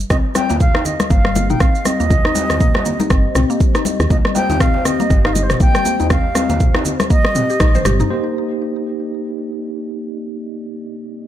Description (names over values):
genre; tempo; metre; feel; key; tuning
afro house; 120 BPM; 4/4; swing 58% on 16ths; C minor; A4 = 439 Hz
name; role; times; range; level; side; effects
woody FM bass; bass; 0.0-8.0 s; G1 to Eb2; -18 LUFS; equal; sidechain pumping
deep house drum kit; drums; 0.0-8.1 s; rim click, shaker, toms; -21 LUFS; equal; none
concert flute; melody; 0.1-7.8 s; C5 to G5; -22 LUFS; equal; ping-pong delay
dark analog pad; sustained chords; 0.8-11.3 s; C4 to Eb5; -27 LUFS; left 2 dB; chorus, sidechain pumping
mallet-like synth pluck; arpeggios; 0.1-8.1 s; G3 to C5; -22 LUFS; left 2 dB; chorus, sidechain pumping, ping-pong delay
electronic kick drum; drums; 0.1-7.7 s; none; -15 LUFS; equal; none
congas; percussion; 0.1-8.0 s; none; -24 LUFS; left 4 dB; none
darbuka; percussion; 0.1-7.5 s; none; -25 LUFS; right 1 dB; none
tine electric piano; stabs; 8.1-11.3 s; Bb3 to C5; -22 LUFS; right 2 dB; fast stereo tremolo, sidechain pumping, ping-pong delay
room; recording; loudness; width
light reverb; none; -14 LUFS; side -11 dB against mid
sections
0.0-8.1 A section; 8.1-11.3 B section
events
band accent 7.6; drum fill 7.7-8.1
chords
0.0 Cm7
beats
| 0.10 0.60 1.10 1.60 | 2.10 2.60 3.10 3.60 | 4.11 4.61 5.11 5.61 | 6.11 6.61 7.11 7.61 | 8.11 8.61 9.11 9.61 | 10.11 10.61 11.11